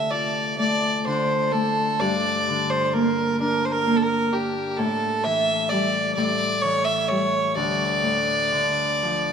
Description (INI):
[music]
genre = celtic folk, Celtic slow air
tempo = 43 BPM (dotted quarters)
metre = 6/8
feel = rubato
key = D minor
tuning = A4 = 439 Hz
[part]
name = warm fiddle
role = melody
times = 0.0-9.3 s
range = G4 to E5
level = -22 LUFS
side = right 1 dB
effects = none
[part]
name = Celtic harp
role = accompaniment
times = 0.0-9.3 s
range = D2 to G4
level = -25 LUFS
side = left 1 dB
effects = none
[sound]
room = wet church reverb, RT60 3.5 s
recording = minimal, uncompressed stereo recording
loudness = -20 LUFS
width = side -7 dB against mid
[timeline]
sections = 0.0-9.3 A section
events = harp fill 9.0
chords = 0.0 Dm; 2.0 Gm; 4.8 A5; 7.6 Dm